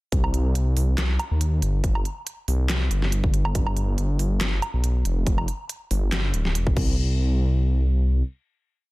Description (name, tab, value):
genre	deep dubstep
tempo	140 BPM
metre	4/4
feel	swing 53% on 16ths, half-time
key	C harmonic minor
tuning	A4 = 436 Hz
part	dark detuned saw bass	bass	0.1-8.2 s	D1 to Eb2	-21 LUFS	equal	none
part	dubstep drum kit	drums	0.1-6.9 s	crash cymbal, handclaps, hi-hat, snare drum, woodblock	-30 LUFS	right 1 dB	studio reverb
part	electronic kick drum	drums	0.1-6.9 s	none	-23 LUFS	equal	studio reverb
room	little or no reverb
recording	dense, heavily limited modern master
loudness	-21 LUFS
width	side -20 dB against mid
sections	0.1-7.0 drop; 7.0-8.9 final hit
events	drop 0.1-7.0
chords	none